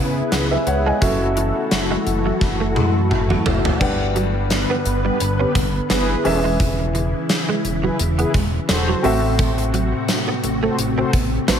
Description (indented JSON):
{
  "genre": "1980s-style pop",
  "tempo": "86 BPM",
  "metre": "4/4",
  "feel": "swing 55% on 16ths",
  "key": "unclear",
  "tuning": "A4 = 440 Hz",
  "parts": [
    { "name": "warm baby grand piano", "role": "accompaniment", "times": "0.0-11.6 s", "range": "G2 to G#5", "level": "-24 LUFS", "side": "equal", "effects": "none" },
    { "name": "soft string machine", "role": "sustained chords", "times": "0.0-11.6 s", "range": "C3 to B4", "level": "-25 LUFS", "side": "left 1 dB", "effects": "ensemble chorus" },
    { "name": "direct-recorded clean electric guitar", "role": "riff", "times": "0.0-11.6 s", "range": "E3 to C#4", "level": "-27 LUFS", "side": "right 6 dB", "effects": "ensemble chorus, digital delay" },
    { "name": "mellow synth brass", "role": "stabs", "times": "0.0-11.6 s", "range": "B3 to C5", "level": "-26 LUFS", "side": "left 2 dB", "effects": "chorus, digital delay" },
    { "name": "chorused synth bass", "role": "bass", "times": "0.0-11.6 s", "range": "E1 to C#3", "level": "-22 LUFS", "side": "equal", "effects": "none" },
    { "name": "gated 80s drum kit", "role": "drums", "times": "0.3-11.6 s", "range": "crash cymbal, hi-hat, kick drum, snare drum, toms", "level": "-22 LUFS", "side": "equal", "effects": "gated reverb" },
    { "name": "tambourine", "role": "percussion", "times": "10.1-11.6 s", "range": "none", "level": "-36 LUFS", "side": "left 8 dB", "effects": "none" }
  ],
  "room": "light reverb, small room ambience",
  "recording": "none",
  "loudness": "-17 LUFS",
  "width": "side -8 dB against mid",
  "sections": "0.0-3.8 A section; 3.8-11.6 B section",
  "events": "drum fill 2.4-3.8",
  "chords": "0.0 C#m7; 1.0 F#m7; 3.8 Gmaj7; 6.3 E6; 9.0 Am6"
}